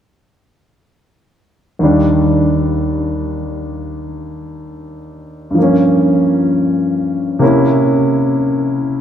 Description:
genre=solo jazz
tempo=64 BPM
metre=4/4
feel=swing 66% on 8ths, rubato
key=Eb major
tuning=A4 = 438 Hz
part: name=warm grand piano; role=solo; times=1.8-9.0 s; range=Eb2 to E4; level=-13 LUFS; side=equal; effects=none
room=wet cathedral reverb, RT60 5.4 s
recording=recorded in a church or concert hall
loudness=-12 LUFS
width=side -9 dB against mid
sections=1.8-9.0 A section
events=none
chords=1.8 Ebmaj7; 5.6 Gm7b5; 7.4 C7b9

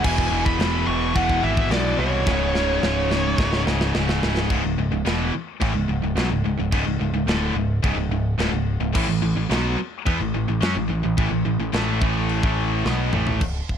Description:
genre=heavy metal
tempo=108 BPM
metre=4/4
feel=straight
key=C# phrygian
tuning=A4 = 439 Hz
part: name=high-gain lead guitar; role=melody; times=0.0-3.6 s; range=C#5 to C#6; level=-25 LUFS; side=equal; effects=distortion, ping-pong delay
part: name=crunchy overdriven guitar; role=riff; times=0.0-13.4 s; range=C#2 to C#4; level=-28 LUFS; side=equal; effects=none
part: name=distorted electric guitar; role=riff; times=0.0-13.4 s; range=C#2 to C#4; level=-27 LUFS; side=right 11 dB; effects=overdrive
part: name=tight distorted guitar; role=riff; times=0.0-13.4 s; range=C#2 to C#4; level=-28 LUFS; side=left 12 dB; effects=distortion
part: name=growling picked electric bass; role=bass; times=0.0-13.8 s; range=C#1 to F#2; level=-25 LUFS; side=equal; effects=overdrive
part: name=tight metal drum kit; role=drums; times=0.0-13.8 s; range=china cymbal, crash cymbal, kick drum, snare drum, toms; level=-26 LUFS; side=equal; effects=none
room=small room ambience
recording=dark, warm production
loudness=-19 LUFS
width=side -8 dB against mid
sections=0.0-4.5 A section; 4.5-13.4 B section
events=drum fill 2.3-4.5, 12.9-13.4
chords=0.0 E5; 2.3 C#5; 4.5 C#m; 8.9 A5

